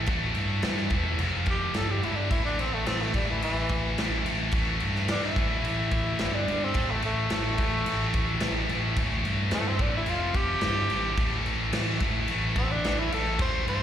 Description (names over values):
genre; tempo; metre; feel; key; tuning
hard rock; 108 BPM; 4/4; straight; A minor; A4 = 442 Hz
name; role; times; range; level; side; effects
scooped high-gain guitar; riff; 0.0-13.8 s; F2 to A3; -29 LUFS; left 1 dB; distortion, slapback echo
overdriven picked electric bass; bass; 0.0-13.8 s; E1 to G2; -30 LUFS; equal; none
big rock drum kit; drums; 0.1-13.8 s; crash cymbal, kick drum, snare drum; -30 LUFS; equal; none
breathy tenor saxophone; melody; 1.5-13.8 s; E3 to C5; -31 LUFS; equal; plate reverb, slapback echo, analog delay
room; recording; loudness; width
light reverb; live gig heard through the venue's PA, recital hall reverb; -24 LUFS; side -10 dB against mid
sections
0.0-13.8 A section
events
tenor saxophone solo 0.0-13.8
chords
0.0 A5; 1.2 F5; 1.8 G5; 2.3 A5; 6.2 G5; 6.8 A5; 10.1 F5; 10.6 G5; 11.2 Am